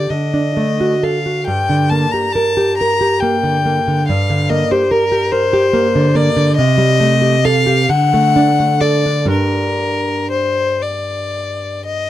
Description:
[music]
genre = romantic duo for violin and classical guitar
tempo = 39-49 BPM (dotted quarters)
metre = 6/8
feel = rubato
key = G minor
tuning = A4 = 440 Hz
[part]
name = clear violin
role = melody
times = 0.0-12.1 s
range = Bb4 to Bb5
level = -17 LUFS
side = left 4 dB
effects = none
[part]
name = nylon-string guitar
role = accompaniment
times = 0.0-12.1 s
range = G2 to Bb4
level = -15 LUFS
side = right 2 dB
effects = none
[sound]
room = light reverb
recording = dry, close 1970s-style studio recording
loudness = -12 LUFS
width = side -13 dB against mid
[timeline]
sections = 0.0-12.1 A section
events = none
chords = 0.1 D; 1.5 Gm; 6.6 Am7b5/C; 7.9 D; 9.3 Gm

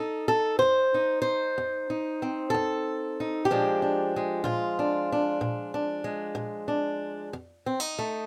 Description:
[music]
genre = acoustic country blues, solo or duo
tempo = 62 BPM (dotted quarters)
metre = 12/8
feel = straight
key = unclear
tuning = A4 = 441 Hz
[part]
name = fingerpicked swing-style acoustic guitar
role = solo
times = 0.0-8.3 s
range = F2 to C5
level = -28 LUFS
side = equal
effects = none
[sound]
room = light reverb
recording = close, detailed microphones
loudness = -28 LUFS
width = mono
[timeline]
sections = 0.0-8.3 A section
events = none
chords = 0.0 F7; 3.5 Bb7; 7.3 F7

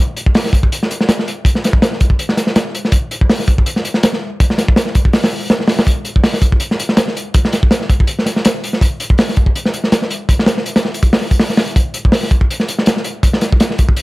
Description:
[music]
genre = drum and bass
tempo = 163 BPM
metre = 4/4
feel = swing 55% on 16ths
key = none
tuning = none
[part]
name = crunchy breakbeat drum kit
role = drums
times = 0.2-14.0 s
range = hi-hat, kick drum, snare drum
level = -12 LUFS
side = equal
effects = none
[sound]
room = little or no reverb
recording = none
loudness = -12 LUFS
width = side -21 dB against mid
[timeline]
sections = 0.0-14.0 A section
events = none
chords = none

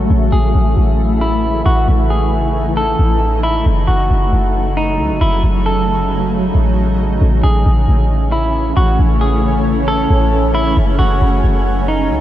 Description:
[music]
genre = hip hop, atmospheric cloud-rap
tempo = 135 BPM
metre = 4/4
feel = half-time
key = A lydian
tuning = A4 = 440 Hz
[part]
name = shimmering ambient pad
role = sustained chords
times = 0.0-12.2 s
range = C#3 to E4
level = -18 LUFS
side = equal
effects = chorus, built-in reverb
[part]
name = warm 808-style bass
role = bass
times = 0.0-12.2 s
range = F#1 to C#2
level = -14 LUFS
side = equal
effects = none
[part]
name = semi-hollow electric guitar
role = melody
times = 0.3-12.2 s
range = D#4 to A4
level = -19 LUFS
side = equal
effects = tape echo
[sound]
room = moderate huge ambient reverb, RT60 6.9 s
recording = dreamy mix soaked in reverb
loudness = -12 LUFS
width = side -13 dB against mid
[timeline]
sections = 0.0-7.2 A section; 7.2-12.2 B section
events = none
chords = 0.1 Amaj7; 3.7 F#m7; 7.2 Amaj7; 10.8 F#m

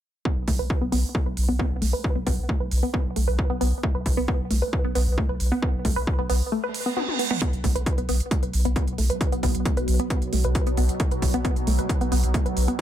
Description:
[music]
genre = driving peak-time techno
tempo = 134 BPM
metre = 4/4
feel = straight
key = unclear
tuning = A4 = 444 Hz
[part]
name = wide unison pluck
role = riff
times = 0.3-12.8 s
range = A3 to B4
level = -28 LUFS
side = equal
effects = sidechain pumping, analog delay
[part]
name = electronic kick drum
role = drums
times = 0.3-12.8 s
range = none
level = -25 LUFS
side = equal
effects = none
[part]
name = saturated sub bass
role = bass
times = 0.4-12.7 s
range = B1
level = -24 LUFS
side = equal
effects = overdrive, sidechain pumping, low-pass filter
[part]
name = techno drum kit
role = drums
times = 0.5-12.8 s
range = hi-hat, toms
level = -33 LUFS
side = right 2 dB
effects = none
[part]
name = reverse cymbal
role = sound effects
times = 6.7-7.4 s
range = none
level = -30 LUFS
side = right 7 dB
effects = none
[part]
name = deep dark ambient pad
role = drone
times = 8.5-12.8 s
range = B2 to F#3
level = -31 LUFS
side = right 1 dB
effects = chorus, built-in reverb, sidechain pumping
[sound]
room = little or no reverb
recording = echo-heavy mix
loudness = -22 LUFS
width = side -11 dB against mid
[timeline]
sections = 0.3-7.4 A section; 7.4-12.8 B section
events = filter sweep on synth arpeggio sound 0.3-7.4; kick drops out 6.5-7.4; reverse cymbal 6.7-7.4; drum fill 7.0-7.4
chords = 0.3 Asus2/B; 7.4 B5

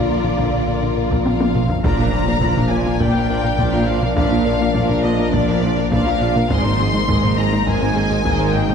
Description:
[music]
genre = cinematic, hybrid orchestral and electronic film score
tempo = 103 BPM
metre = 4/4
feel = straight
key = unclear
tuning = A4 = 440 Hz
[part]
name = warm symphonic violin section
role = melody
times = 0.0-8.7 s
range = D5 to C6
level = -24 LUFS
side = left 5 dB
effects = none
[part]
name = warm studio violin section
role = second line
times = 0.0-8.7 s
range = F4 to F5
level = -27 LUFS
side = left 3 dB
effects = none
[part]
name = warm symphonic viola section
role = accompaniment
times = 0.0-8.7 s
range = Ab3 to D5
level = -26 LUFS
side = right 4 dB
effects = none
[part]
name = ethereal airy pad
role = sustained chords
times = 0.0-8.7 s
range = Eb3 to F5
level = -26 LUFS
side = equal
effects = ensemble chorus, built-in reverb
[part]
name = warm French horn section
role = sustained chords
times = 0.0-8.7 s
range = Bb3 to F4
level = -25 LUFS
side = left 5 dB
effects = none
[part]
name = soft round pluck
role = arpeggios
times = 0.0-8.7 s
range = Ab3 to Bb4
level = -29 LUFS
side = right 3 dB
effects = none
[part]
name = rubbery square bass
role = riff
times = 0.0-8.7 s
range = Ab2 to Bb3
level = -24 LUFS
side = left 3 dB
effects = none
[part]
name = clear symphonic double bass section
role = bass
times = 0.0-8.7 s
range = Ab1 to Bb1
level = -24 LUFS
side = right 4 dB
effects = none
[part]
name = rich symphonic cello section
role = bass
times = 0.0-8.7 s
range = Ab2 to D3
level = -26 LUFS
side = right 2 dB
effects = none
[part]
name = sub bass with octave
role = bass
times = 0.0-8.7 s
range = Ab1 to Bb1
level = -27 LUFS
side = equal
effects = none
[part]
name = taiko ensemble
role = drums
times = 0.2-8.7 s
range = none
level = -24 LUFS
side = equal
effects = none
[part]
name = impact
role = sound effects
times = 1.8-4.2 s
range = none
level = -27 LUFS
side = equal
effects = none
[sound]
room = moderate scoring stage reverb, RT60 1.6 s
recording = faint mains hum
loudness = -15 LUFS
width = side -6 dB against mid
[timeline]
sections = 0.0-1.8 A section; 1.8-8.7 B section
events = drum fill 1.3-1.8; impact 1.8-4.2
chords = 0.0 Bb; 6.5 Abadd9

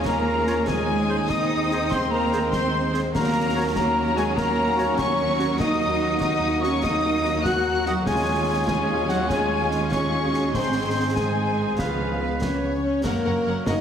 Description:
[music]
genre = cinematic, heroic adventure film score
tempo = 97 BPM (dotted quarters)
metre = 12/8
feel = straight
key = unclear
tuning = A4 = 441 Hz
[part]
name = rich studio violin section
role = melody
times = 0.0-13.8 s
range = F5 to Gb6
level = -31 LUFS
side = left 4 dB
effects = none
[part]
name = rich studio violin section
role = second line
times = 0.0-13.8 s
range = Db4 to D#5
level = -33 LUFS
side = left 2 dB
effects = none
[part]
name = rich studio viola section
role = accompaniment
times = 0.0-13.8 s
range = Gb3 to C#5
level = -33 LUFS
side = right 1 dB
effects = none
[part]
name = bright trombone section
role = sustained chords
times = 0.0-13.8 s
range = Db3 to Db4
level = -32 LUFS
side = right 3 dB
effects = none
[part]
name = mellow French horn section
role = sustained chords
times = 0.0-13.8 s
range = F3 to Gb4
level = -29 LUFS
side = left 2 dB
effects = none
[part]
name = rich symphonic cello section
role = bass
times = 0.0-13.7 s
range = F#2 to Gb4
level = -29 LUFS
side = right 1 dB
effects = none
[part]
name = rich symphonic double bass section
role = bass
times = 0.0-13.7 s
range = F#1 to Eb2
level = -29 LUFS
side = right 2 dB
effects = none
[part]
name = silver concert flute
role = second line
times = 0.1-12.4 s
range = F5 to Gb6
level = -29 LUFS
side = left 2 dB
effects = none
[part]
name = warm trumpet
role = stabs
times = 0.1-13.8 s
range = F4 to Gb5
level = -30 LUFS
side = right 1 dB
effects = none
[part]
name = concert snare drum, concert bass drum and clash cymbals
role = drums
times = 0.1-13.8 s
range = none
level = -31 LUFS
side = equal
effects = none
[part]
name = mellow clarinet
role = second line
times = 0.5-13.8 s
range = F4 to D#5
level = -35 LUFS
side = left 1 dB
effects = none
[part]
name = warm oboe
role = second line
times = 0.5-12.8 s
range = Cb5 to Eb5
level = -34 LUFS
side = right 1 dB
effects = none
[part]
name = timpani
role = percussion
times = 5.6-6.2 s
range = Eb3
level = -34 LUFS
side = equal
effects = none
[sound]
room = moderate scoring stage reverb, RT60 1.8 s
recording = heavily compressed radio sound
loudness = -20 LUFS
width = side -8 dB against mid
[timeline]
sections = 0.0-13.1 A section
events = none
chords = 0.0 Db/Eb; 0.7 Ab/Eb; 3.1 Gb/Eb; 5.6 Ebm; 8.1 Db/Eb; 10.5 Ab; 11.8 Db7; 13.1 F#

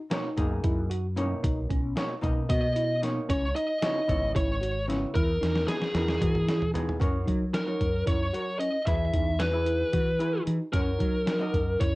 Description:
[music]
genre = progressive instrumental, band music in an uneven meter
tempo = 226 BPM (eighths)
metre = 7/8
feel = straight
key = F# mixolydian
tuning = A4 = 440 Hz
[part]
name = vintage hollow-body jazz guitar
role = accompaniment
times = 0.1-11.8 s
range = B2 to D#5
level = -34 LUFS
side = equal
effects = none
[part]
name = tine electric piano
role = arpeggios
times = 0.1-12.0 s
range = C#4 to F#4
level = -34 LUFS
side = right 1 dB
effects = medium stereo tremolo, tape echo
[part]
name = lo-fi sampler-style drum kit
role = drums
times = 0.1-11.9 s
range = hi-hat, kick drum, snare drum, toms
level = -30 LUFS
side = equal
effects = none
[part]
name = mellow fretless electric bass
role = bass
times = 0.4-12.0 s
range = G#1 to F#3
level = -30 LUFS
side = equal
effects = analog chorus
[part]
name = biting lead guitar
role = melody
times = 2.5-12.0 s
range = G#4 to E5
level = -29 LUFS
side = equal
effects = overdrive
[sound]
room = moderate studio reverb, RT60 0.5 s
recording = worn, warbling old tape, cassette tape, warbly pitch drift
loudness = -25 LUFS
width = side -20 dB against mid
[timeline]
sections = 0.0-7.0 A section; 7.0-12.0 B section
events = drum fill 5.4-7.0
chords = 0.0 Bmaj9; 3.3 C#m7; 5.1 Emaj7; 7.0 F#; 8.9 E; 10.7 F#

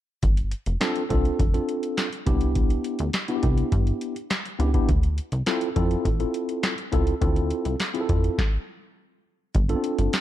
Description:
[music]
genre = early-eighties boogie funk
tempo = 103 BPM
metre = 4/4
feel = straight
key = D dorian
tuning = A4 = 440 Hz
[part]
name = plucky analog bass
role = bass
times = 0.2-10.1 s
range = F1 to G2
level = -24 LUFS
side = equal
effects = none
[part]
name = booming analog drum machine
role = drums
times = 0.2-10.2 s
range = handclaps, hi-hat, kick drum, snare drum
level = -24 LUFS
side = equal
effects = none
[part]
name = mellow tine electric piano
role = accompaniment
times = 0.8-10.1 s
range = B3 to A4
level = -26 LUFS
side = equal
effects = medium stereo tremolo
[sound]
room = light reverb, digital ambience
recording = dark, warm production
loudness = -22 LUFS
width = side -13 dB against mid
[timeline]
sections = 0.2-9.5 A section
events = stop 8.4-9.5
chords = 0.2 G7sus4; 2.3 Cmaj9; 4.9 Dm9; 9.5 G7sus4

